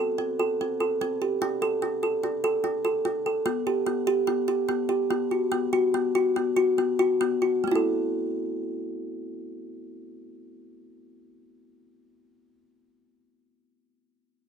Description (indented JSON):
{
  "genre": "contemporary instrumental, contemporary",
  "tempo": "143 BPM",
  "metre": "5/4",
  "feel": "uneven beats",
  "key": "A dorian",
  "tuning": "A4 = 441 Hz",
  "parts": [
    { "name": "kalimba", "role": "solo", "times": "0.0-12.3 s", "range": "A3 to A4", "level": "-24 LUFS", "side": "equal", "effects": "none" }
  ],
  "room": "little or no reverb",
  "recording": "close, detailed microphones",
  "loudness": "-23 LUFS",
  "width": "side -7 dB against mid",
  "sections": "0.0-7.6 A section; 7.6-12.0 B section",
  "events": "slowing down 4.3-7.6",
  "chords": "0.0 Am; 1.4 D5; 3.5 G; 5.5 B5; 7.6 Am"
}